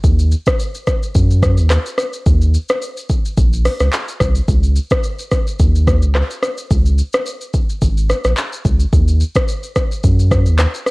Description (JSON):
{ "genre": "afrobeats", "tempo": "108 BPM", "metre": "4/4", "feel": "swing 55% on 16ths", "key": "Eb dorian", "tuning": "A4 = 440 Hz", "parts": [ { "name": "saturated sub bass", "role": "bass", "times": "0.0-10.7 s", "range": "Ab1 to Gb2", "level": "-13 LUFS", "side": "equal", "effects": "none" }, { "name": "afro-pop drum kit", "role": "drums", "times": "0.0-10.9 s", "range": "handclaps, hi-hat, kick drum, rim click, shaker", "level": "-16 LUFS", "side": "equal", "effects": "overdrive" } ], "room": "little or no reverb", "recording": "worn, warbling old tape, cassette tape, warbly pitch drift", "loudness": "-13 LUFS", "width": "side -25 dB against mid", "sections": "0.0-10.9 A section", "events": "none", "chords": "none" }